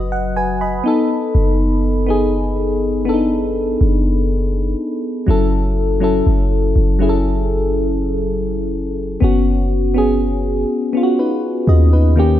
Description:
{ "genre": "contemporary R&B", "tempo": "61 BPM", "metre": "4/4", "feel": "straight", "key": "F# dorian", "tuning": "A4 = 441 Hz", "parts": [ { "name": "mellow FM electric piano", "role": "accompaniment", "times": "0.0-12.4 s", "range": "D#3 to B5", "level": "-17 LUFS", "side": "left 1 dB", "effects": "chorus" }, { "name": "clean 808-style bass", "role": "bass", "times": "0.0-12.4 s", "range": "F#1 to D#2", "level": "-17 LUFS", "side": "equal", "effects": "none" } ], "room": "light reverb", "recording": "none", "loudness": "-14 LUFS", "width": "side -12 dB against mid", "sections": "0.0-12.4 A section", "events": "none", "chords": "0.0 B6/F#; 0.9 B7/F#; 5.3 F#m7; 9.2 C#9sus4/F#" }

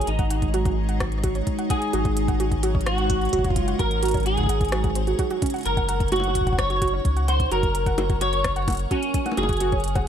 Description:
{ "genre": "IDM", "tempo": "129 BPM", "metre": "4/4", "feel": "straight", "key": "unclear", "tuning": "A4 = 441 Hz", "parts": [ { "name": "clean electric guitar", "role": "melody", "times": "0.0-10.1 s", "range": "Db4 to Db5", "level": "-26 LUFS", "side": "equal", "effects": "ensemble chorus, ping-pong delay" }, { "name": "icy glass pad", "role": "sustained chords", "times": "0.0-10.1 s", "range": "Ab3 to Db5", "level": "-31 LUFS", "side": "equal", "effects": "chorus, built-in reverb" }, { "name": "warbly dusty pluck", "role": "arpeggios", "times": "0.0-10.1 s", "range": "Db4 to Gb5", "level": "-29 LUFS", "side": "right 4 dB", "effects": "chorus, digital delay" }, { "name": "warm sub bass", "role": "bass", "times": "0.0-10.1 s", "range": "Gb1 to Db2", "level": "-25 LUFS", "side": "equal", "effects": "none" }, { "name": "organic electronic drum kit", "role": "drums", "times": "0.0-10.0 s", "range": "bongos, hi-hat, rim click", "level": "-31 LUFS", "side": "left 2 dB", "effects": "studio reverb" }, { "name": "electronic kick drum", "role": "drums", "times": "0.2-10.1 s", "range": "none", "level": "-26 LUFS", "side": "equal", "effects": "studio reverb" } ], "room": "little or no reverb", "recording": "none", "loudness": "-20 LUFS", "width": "side -9 dB against mid", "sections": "0.0-10.1 A section", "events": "none", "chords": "0.0 Ab7sus4; 5.7 Gb" }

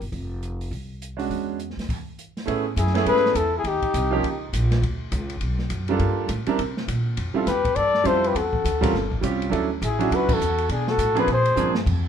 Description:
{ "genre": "jazz, small-group swing and bop", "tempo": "204 BPM", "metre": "4/4", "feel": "swing 61% on 8ths", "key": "unclear", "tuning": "A4 = 440 Hz", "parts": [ { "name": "mellow flugelhorn", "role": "melody", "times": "0.0, 2.8-4.5, 7.5-11.7 s", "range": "G4 to D5", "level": "-22 LUFS", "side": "left 5 dB", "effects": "none" }, { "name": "upright bass", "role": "bass", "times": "0.0-12.1 s", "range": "F1 to C3", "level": "-26 LUFS", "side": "equal", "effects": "none" }, { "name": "open jazz drum kit", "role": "drums", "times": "0.0-12.0 s", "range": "crash cymbal, hi-hat, kick drum, ride cymbal, snare drum", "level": "-30 LUFS", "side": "equal", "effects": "none" }, { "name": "clear baby grand piano", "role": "accompaniment", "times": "1.2-11.7 s", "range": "E#3 to C5", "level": "-24 LUFS", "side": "right 6 dB", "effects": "none" }, { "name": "dark trumpet", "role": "second line", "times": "2.8-4.5, 7.5-11.7 s", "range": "D4 to A4", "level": "-31 LUFS", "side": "right 4 dB", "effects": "none" } ], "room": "moderate club reverb, RT60 0.7 s", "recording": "minimal, uncompressed stereo recording", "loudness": "-21 LUFS", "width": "side -8 dB against mid", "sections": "0.0-2.5 A section; 2.5-11.9 B section", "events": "stop 1.9-2.5; band accent 10.3; drum fill 11.6", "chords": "0.1 F5; 1.3 E13; 2.5 Amaj9; 3.6 D#7; 4.8 D6; 6.0 Gm9; 6.6 Bbsus2; 7.2 Fmaj9; 8.3 Em9; 8.9 A7alt/G; 9.5 Dmaj9; 10.7 Bm7; 11.3 Bb9" }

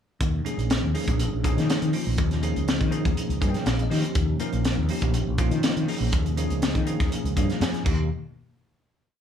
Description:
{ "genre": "electric jazz fusion", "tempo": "122 BPM", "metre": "4/4", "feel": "straight", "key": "Eb mixolydian", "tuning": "A4 = 440 Hz", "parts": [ { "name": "mellow fretless electric bass", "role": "bass", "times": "0.2-8.1 s", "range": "Bb1 to Eb3", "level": "-26 LUFS", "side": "equal", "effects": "lush chorus" }, { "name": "crisp fusion drum kit", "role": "drums", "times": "0.2-8.0 s", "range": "crash cymbal, hi-hat, kick drum, snare drum", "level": "-26 LUFS", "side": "left 1 dB", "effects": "none" }, { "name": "bell-like tine electric piano", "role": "accompaniment", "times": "0.4-8.1 s", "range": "F3 to Ab5", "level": "-28 LUFS", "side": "equal", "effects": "fast stereo tremolo" } ], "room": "light reverb", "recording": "studio ambience", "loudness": "-22 LUFS", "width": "side -8 dB against mid", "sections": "0.2-8.1 groove; 8.1-9.2 final hit", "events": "tine electric piano fill 3.2-4.2, 7.1-8.1", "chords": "0.2 Eb9sus4; 7.9 Eb; 8.1 N.C." }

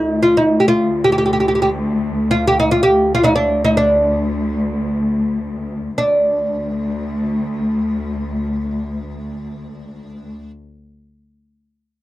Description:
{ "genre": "Persian modal ensemble", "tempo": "free time", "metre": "none", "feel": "none", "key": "unclear", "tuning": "A4 = 437 Hz", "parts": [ { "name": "oud", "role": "melody", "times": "0.0-10.5 s", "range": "D4 to G4", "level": "-15 LUFS", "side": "equal", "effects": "none" }, { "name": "rich symphonic cello section", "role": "drone", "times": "0.0-10.3 s", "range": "D2", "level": "-20 LUFS", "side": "left 1 dB", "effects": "none" } ], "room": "moderate booth ambience, RT60 0.2 s", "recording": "dry, close 1970s-style studio recording", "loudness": "-15 LUFS", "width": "side -16 dB against mid", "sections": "0.0-6.0 A section; 6.0-9.5 B section", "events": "slowing down 2.9-6.0", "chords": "none" }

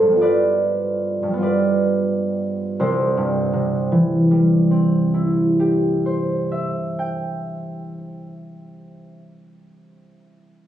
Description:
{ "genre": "classical, solo harp piece", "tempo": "42-53 BPM", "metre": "4/4", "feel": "rubato", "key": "C major", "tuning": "A4 = 443 Hz", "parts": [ { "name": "concert harp", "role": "solo", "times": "0.0-9.7 s", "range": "C2 to G5", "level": "-18 LUFS", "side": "right 1 dB", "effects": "none" } ], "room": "light reverb", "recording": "recorded on a phone in the room, club reverb, compression", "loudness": "-17 LUFS", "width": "side -11 dB against mid", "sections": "0.0-2.8 A section; 2.8-8.2 B section", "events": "slowing down 0.0-2.8", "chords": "0.2 G7; 2.8 C" }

